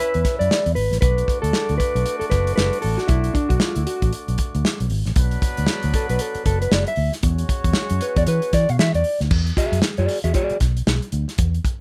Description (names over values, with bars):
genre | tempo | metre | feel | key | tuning
funk | 116 BPM | 4/4 | swing 60% on 16ths | unclear | A4 = 440 Hz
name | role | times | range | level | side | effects
clear horn section | second line | 0.0-9.0 s | F#3 to E5 | -32 LUFS | equal | none
mellow electric guitar | accompaniment | 0.0-10.6 s | D4 to E#5 | -25 LUFS | equal | none
vintage muted fingered electric bass | bass | 0.1-11.6 s | F#1 to E3 | -24 LUFS | equal | none
warm soul drum kit | drums | 0.1-11.8 s | crash cymbal, hi-hat, kick drum, snare drum | -24 LUFS | equal | none
room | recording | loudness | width
little or no reverb | rough home demo mix | -20 LUFS | mono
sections
0.0-9.3 A section; 9.3-11.8 B section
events
clean electric guitar solo 0.0-9.3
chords
0.0 E7(no3); 1.0 Bm7; 7.2 E13; 9.3 E9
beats
0.51 | 1.02 1.54 2.06 2.58 | 3.09 3.61 4.13 4.65 | 5.17 5.68 6.20 6.72 | 7.24 7.76 8.28 8.79 | 9.31 9.83 10.35 10.87 | 11.39